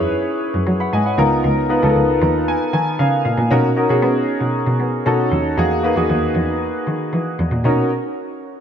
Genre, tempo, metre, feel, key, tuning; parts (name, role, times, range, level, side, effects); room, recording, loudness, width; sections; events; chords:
polished 1980s jazz-funk pop; 116 BPM; 4/4; straight; B major; A4 = 439 Hz
warm grand piano; accompaniment; 0.0-7.9 s; A#3 to B5; -17 LUFS; equal; analog chorus
rich cello; bass; 0.0-7.9 s; C#2 to B3; -20 LUFS; equal
wet lush hall reverb, RT60 3.0 s; dreamy mix soaked in reverb; -15 LUFS; side -8 dB against mid
0.0-7.6 A section
grand piano fill 2.0-3.5
0.0 F#9sus4; 1.2 C#13; 3.5 Bmaj9; 5.1 B9; 5.6 Emaj9#11; 7.6 Bmaj9